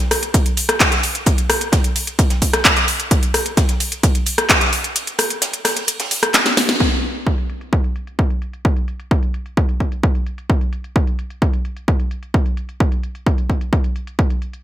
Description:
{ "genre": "techno", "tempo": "130 BPM", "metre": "4/4", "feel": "straight", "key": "none", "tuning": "none", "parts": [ { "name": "compact cocktail drum kit", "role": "drums", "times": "0.0-6.7 s", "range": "hi-hat, snare drum", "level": "-28 LUFS", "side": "right 3 dB", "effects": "sidechain pumping on hats, high-pass filter on hats, high-pass filter on snare, high-pass filter on room, gated reverb" }, { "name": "techno drum kit", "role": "drums", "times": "0.0-14.6 s", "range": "handclaps, hi-hat, ride cymbal, rim click, snare drum", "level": "-16 LUFS", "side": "equal", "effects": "low-pass filter on snare, low-pass filter on hats, low-pass filter on cymbals, low-pass filter on room, gated reverb" }, { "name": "electronic kick drum", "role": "drums", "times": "0.3-14.3 s", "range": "none", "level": "-17 LUFS", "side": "equal", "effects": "none" } ], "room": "light reverb", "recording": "bright 1980s-style digital production", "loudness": "-16 LUFS", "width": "side -12 dB against mid", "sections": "0.0-6.8 A section; 6.8-14.6 B section", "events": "drop 0.0-6.8; kick drops out 5.0-6.8; drum fill 6.3-6.8; band accent 6.7", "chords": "none" }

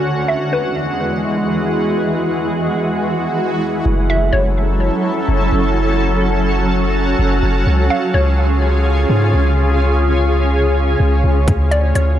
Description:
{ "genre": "hip hop, atmospheric cloud-rap", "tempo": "126 BPM", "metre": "4/4", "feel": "half-time", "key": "F# minor", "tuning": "A4 = 439 Hz", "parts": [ { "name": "shimmering ambient pad", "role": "sustained chords", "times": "0.0-12.2 s", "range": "E2 to A4", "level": "-17 LUFS", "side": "equal", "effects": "chorus, built-in reverb, sidechain pumping, low-pass filter" }, { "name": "hollow square pluck", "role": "melody", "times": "0.3-1.0, 4.1-4.8, 7.9-8.6, 11.7-12.2 s", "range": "B4 to E#5", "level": "-22 LUFS", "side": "equal", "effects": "chorus, low-pass filter, tape echo" }, { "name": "swell", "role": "sound effects", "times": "2.4-3.9 s", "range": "none", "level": "-26 LUFS", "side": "right 1 dB", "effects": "none" }, { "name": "long sustained 808-style bass", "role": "bass", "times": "3.9-12.2 s", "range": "F#1 to G#2", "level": "-15 LUFS", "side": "equal", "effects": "none" }, { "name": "trap drum kit", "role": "drums", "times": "11.5-12.1 s", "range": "hi-hat, kick drum", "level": "-18 LUFS", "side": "equal", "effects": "none" } ], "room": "little or no reverb", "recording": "dry, gritty hardware recording", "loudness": "-14 LUFS", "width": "side -11 dB against mid", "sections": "0.0-3.9 A section; 3.9-12.2 B section", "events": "filter sweep 0.0-3.9; swell 2.4-3.9", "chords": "0.0 Eadd9; 3.9 F#m7; 7.7 C#; 11.5 Dmaj7" }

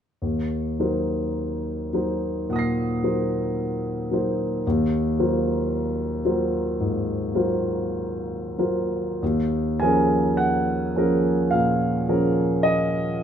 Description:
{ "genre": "classical, impressionist solo piano", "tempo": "45-57 BPM", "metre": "4/4", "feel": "rubato", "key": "Eb minor", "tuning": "A4 = 443 Hz", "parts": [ { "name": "clear concert grand piano", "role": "solo", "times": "0.2-13.2 s", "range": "Eb2 to C7", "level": "-21 LUFS", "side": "equal", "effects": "none" } ], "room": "wet large studio reverb, RT60 1.2 s", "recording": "nothing above 10.5 kHz", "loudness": "-21 LUFS", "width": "side -8 dB against mid", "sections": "0.2-9.2 A section; 9.2-13.2 B section", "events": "none", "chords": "0.2 Ebm6; 4.6 Ab13/Eb; 9.2 Ebm11" }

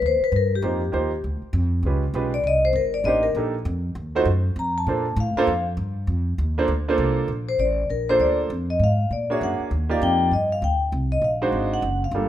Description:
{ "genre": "jazz, small-group swing and bop", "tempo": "198 BPM", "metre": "4/4", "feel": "swing 63% on 8ths", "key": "Bb major", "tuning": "A4 = 440 Hz", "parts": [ { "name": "vibraphone with medium mallets", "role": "melody", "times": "0.0-12.3 s", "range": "G4 to Bb5", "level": "-23 LUFS", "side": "left 3 dB", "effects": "none" }, { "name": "upright bass", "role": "bass", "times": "0.0-12.3 s", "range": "Gb1 to Bb2", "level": "-24 LUFS", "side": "equal", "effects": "none" }, { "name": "warm concert grand piano", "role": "accompaniment", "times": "0.6-12.3 s", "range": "G3 to D5", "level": "-24 LUFS", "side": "right 3 dB", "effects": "none" } ], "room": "moderate large studio reverb, RT60 1.3 s", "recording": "minimal, uncompressed stereo recording", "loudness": "-20 LUFS", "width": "side -12 dB against mid", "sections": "0.0-7.3 A section; 7.3-12.3 B section", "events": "none", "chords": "0.0 Eb69; 1.2 Dm; 1.8 Db7#11; 2.4 Cm9; 3.7 F7(no3); 4.9 Bbmaj9; 7.3 Bbmaj7; 8.5 Fm; 9.1 Bb7alt; 9.7 Ebmaj7; 10.9 Bb9; 11.5 Ab7#11" }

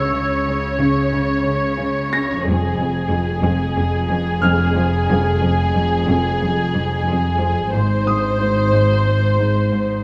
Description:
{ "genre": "cinematic", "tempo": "91 BPM", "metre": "4/4", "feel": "straight", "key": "unclear", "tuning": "A4 = 440 Hz", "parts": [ { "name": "dark studio violin section", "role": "melody", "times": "0.0-10.0 s", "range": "Ab4 to C#5", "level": "-24 LUFS", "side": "equal", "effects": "none" }, { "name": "warm symphonic cello section", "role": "bass", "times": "0.0-10.0 s", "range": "F2 to C#3", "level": "-26 LUFS", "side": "equal", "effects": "none" }, { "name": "warm symphonic double bass section", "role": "bass", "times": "0.0-10.0 s", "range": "F1 to C#2", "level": "-25 LUFS", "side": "equal", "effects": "none" }, { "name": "bright grand piano", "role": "texture", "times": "0.0-10.0 s", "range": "D#6 to Bb6", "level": "-29 LUFS", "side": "equal", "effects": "none" }, { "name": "rich symphonic cello section", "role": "riff", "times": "0.2-9.9 s", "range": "F2 to C#4", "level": "-24 LUFS", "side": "equal", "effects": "none" } ], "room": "wet scoring stage reverb, RT60 1.7 s", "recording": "none", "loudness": "-18 LUFS", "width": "mono", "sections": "0.0-10.0 A section", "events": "none", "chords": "0.0 C#m; 2.5 Fm; 7.7 G#" }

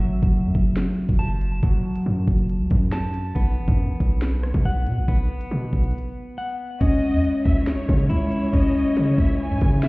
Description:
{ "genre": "hip hop, drill", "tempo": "139 BPM", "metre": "4/4", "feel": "half-time", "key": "C# minor", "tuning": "A4 = 440 Hz", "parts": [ { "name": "electric guitar at the edge of break-up", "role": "arpeggios", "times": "0.0-9.9 s", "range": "F#3 to A5", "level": "-25 LUFS", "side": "left 1 dB", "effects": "low-pass filter, ping-pong delay" }, { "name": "hard-hitting 808-style bass", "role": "bass", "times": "0.0-9.9 s", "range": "F#1 to C#3", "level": "-23 LUFS", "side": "equal", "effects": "none" }, { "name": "drill drum kit", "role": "drums", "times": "0.2-9.9 s", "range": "crash cymbal, hi-hat, kick drum, rim click, snare drum", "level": "-21 LUFS", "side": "equal", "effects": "none" }, { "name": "dark studio violin section", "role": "second line", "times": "6.8-9.8 s", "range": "C#5 to G#5", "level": "-32 LUFS", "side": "equal", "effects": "ping-pong delay" }, { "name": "warm symphonic string section", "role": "sustained chords", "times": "6.8-9.9 s", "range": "G#3 to C#5", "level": "-29 LUFS", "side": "right 1 dB", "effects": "none" } ], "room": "digital ambience", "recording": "heard muffled through a wall, stone room reverb, EQ", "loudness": "-19 LUFS", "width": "side -24 dB against mid", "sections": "0.0-6.8 A section; 6.8-9.9 B section", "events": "break 5.9-6.8", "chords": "0.0 F#m; 3.4 B5; 6.8 C#madd9" }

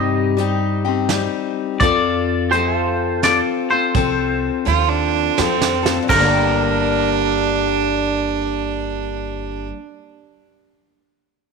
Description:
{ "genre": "honky-tonk and classic country", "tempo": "84 BPM", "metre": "3/4", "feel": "swing 66% on 8ths", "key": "G minor", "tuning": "A4 = 440 Hz", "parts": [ { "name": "twangy electric guitar", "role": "melody", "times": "0.0-9.7 s", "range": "Bb4 to Eb5", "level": "-21 LUFS", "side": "left 1 dB", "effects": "tape echo" }, { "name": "picked steel-string acoustic guitar", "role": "accompaniment", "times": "0.0-9.9 s", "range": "G2 to Bb4", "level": "-21 LUFS", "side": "left 11 dB", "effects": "none" }, { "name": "pedal steel guitar", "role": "sustained chords", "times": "0.0-9.7 s", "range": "G4 to G5", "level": "-26 LUFS", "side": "right 12 dB", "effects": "wide subtle chorus" }, { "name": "upright bass", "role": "bass", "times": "0.0-9.7 s", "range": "G1 to G2", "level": "-24 LUFS", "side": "right 2 dB", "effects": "none" }, { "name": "soft brush drum kit", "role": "drums", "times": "0.4-6.3 s", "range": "crash cymbal, hi-hat, kick drum, snare drum", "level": "-22 LUFS", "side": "right 6 dB", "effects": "none" }, { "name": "clear fiddle", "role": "second line", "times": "4.7-9.7 s", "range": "C4 to F4", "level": "-20 LUFS", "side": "right 14 dB", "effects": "none" } ], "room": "moderate echo chamber reverb, RT60 2.2 s", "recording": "1960s-style stereo with parts hard left and right", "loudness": "-16 LUFS", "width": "side -4 dB against mid", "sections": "0.0-6.1 A section; 6.1-10.4 B section", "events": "drum fill 5.4-6.1", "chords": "0.0 Cm; 1.8 F; 6.1 Gm" }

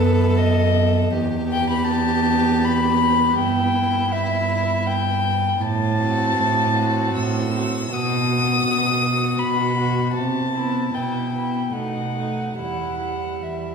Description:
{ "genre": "classical, slow romantic movement for string quartet", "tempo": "69-83 BPM", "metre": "3/4", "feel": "rubato", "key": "E minor", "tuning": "A4 = 440 Hz", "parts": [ { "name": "dark violin", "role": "melody", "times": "0.0-13.7 s", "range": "B4 to E6", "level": "-22 LUFS", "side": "left 4 dB", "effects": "none" }, { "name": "rich violin", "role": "second line", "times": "0.0-13.7 s", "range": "D#4 to A4", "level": "-29 LUFS", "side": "right 1 dB", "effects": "none" }, { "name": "dark viola", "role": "accompaniment", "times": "0.0-13.7 s", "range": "G3 to C4", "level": "-24 LUFS", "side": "right 1 dB", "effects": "none" }, { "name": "rich cello", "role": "bass", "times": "0.0-13.7 s", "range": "E2 to C3", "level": "-24 LUFS", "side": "right 3 dB", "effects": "none" } ], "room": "wet recital hall reverb, RT60 1.7 s", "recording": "heard from further back in the room", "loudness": "-18 LUFS", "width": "side -6 dB against mid", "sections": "0.0-13.7 A section", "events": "none", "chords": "0.0 B7/F#; 1.1 Em; 3.4 Em/G; 5.6 F#m7b5/A; 7.9 B; 10.2 Cmaj7; 10.9 Em/B; 11.7 B7; 12.6 Em" }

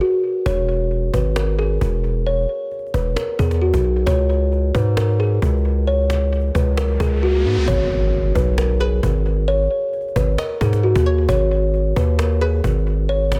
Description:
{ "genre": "hip hop, trap", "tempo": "133 BPM", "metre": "4/4", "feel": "half-time", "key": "G# minor", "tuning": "A4 = 441 Hz", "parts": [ { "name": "kalimba", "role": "melody", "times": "0.0-13.4 s", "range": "F#4 to C#5", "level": "-23 LUFS", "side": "equal", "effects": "low-pass filter, tape echo" }, { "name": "distorted 808-style bass", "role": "bass", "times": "0.5-13.4 s", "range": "E1 to G#2", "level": "-21 LUFS", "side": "equal", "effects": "distortion" }, { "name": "cajon", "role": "drums", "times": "0.5-13.4 s", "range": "none", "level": "-30 LUFS", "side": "equal", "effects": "tape echo" }, { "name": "riser and impact", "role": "sound effects", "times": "6.7-9.5 s", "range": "none", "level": "-31 LUFS", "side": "equal", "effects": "none" }, { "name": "string-like resonator pluck", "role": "second line", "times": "8.8-13.1 s", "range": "B4 to D#5", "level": "-32 LUFS", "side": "equal", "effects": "chorus, tape echo" } ], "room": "studio reverb", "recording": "echo-heavy mix", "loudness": "-19 LUFS", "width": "mono", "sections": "0.0-7.7 A section; 7.7-13.4 B section", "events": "break 0.0-0.5; riser 6.7-7.7; impact 7.7-9.5", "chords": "0.5 E; 4.1 C#5; 7.7 G#m" }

